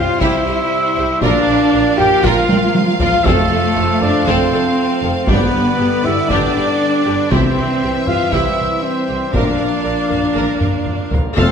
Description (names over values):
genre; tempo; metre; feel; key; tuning
cinematic, epic orchestral film score; 118 BPM; 4/4; straight; unclear; A4 = 440 Hz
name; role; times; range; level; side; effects
clear symphonic violin section; melody; 0.0-11.5 s; C5 to F5; -26 LUFS; left 2 dB; none
rich symphonic violin section; second line; 0.0-11.5 s; C4 to F5; -27 LUFS; left 2 dB; none
rich symphonic viola section; accompaniment; 0.0-11.5 s; G4 to F5; -26 LUFS; right 2 dB; none
dark trombone section; sustained chords; 0.0-11.5 s; C3 to C4; -24 LUFS; right 4 dB; none
pipe organ, principal; sustained chords; 0.0-11.5 s; G3 to F5; -26 LUFS; equal; none
warm French horn section; sustained chords; 0.0-11.5 s; A3 to G4; -19 LUFS; left 4 dB; none
mellow trumpet; stabs; 0.0-11.5 s; A4 to G5; -21 LUFS; right 2 dB; none
clear studio cello section; bass; 0.0-11.4 s; F2 to G4; -22 LUFS; right 2 dB; none
rich symphonic double bass section; bass; 0.0-11.5 s; F1 to C2; -24 LUFS; right 4 dB; none
taiko ensemble; drums; 0.2-11.5 s; none; -20 LUFS; equal; none
timpani; percussion; 3.3-4.0, 7.3-8.0, 11.4-11.5 s; F2 to C3; -22 LUFS; left 1 dB; none
room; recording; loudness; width
moderate scoring stage reverb, RT60 1.9 s; none; -13 LUFS; side -7 dB against mid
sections
0.0-11.4 A section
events
drum fill 2.5-3.3, 10.6-11.4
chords
0.0 C; 1.2 Bb; 3.3 F; 5.3 G; 7.3 C; 9.3 Bb